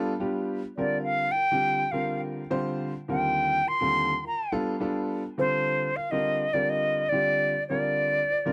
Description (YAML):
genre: jazz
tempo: 104 BPM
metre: 4/4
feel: swing 56% on 16ths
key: unclear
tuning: A4 = 437 Hz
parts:
  - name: warm grand piano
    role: accompaniment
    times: 0.0-8.5 s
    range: Eb2 to C5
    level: -32 LUFS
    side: equal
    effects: none
  - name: bright concert flute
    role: melody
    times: 0.8-8.5 s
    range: C5 to C6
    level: -27 LUFS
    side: equal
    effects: none
room: light reverb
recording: dark, warm production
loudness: -27 LUFS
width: mono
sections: 0.0-8.5 A section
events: none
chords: 0.0 G7; 0.8 Bbadd9; 3.1 Ebmaj7; 4.5 G7; 5.4 Bbmaj9; 6.6 Csus2